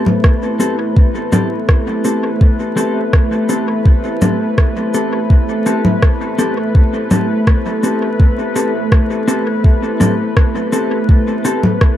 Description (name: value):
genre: ambient dub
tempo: 83 BPM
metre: 4/4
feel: straight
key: A minor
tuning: A4 = 438 Hz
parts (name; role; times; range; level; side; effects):
- deep dark ambient pad; sustained chords; 0.0-12.0 s; A3 to C5; -18 LUFS; equal; chorus, built-in reverb
- mellow electric guitar; stabs; 0.0-11.6 s; C4 to A4; -20 LUFS; left 1 dB; vibrato effect, dub echo
- electronic congas, rim click and cabasa; drums; 0.1-12.0 s; none; -18 LUFS; left 1 dB; dub echo
- electronic kick drum; drums; 0.2-12.0 s; none; -10 LUFS; equal; none
room: light reverb, digital ambience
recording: vinyl crackle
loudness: -12 LUFS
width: side -12 dB against mid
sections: 0.0-12.0 A section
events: none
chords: 0.0 Am7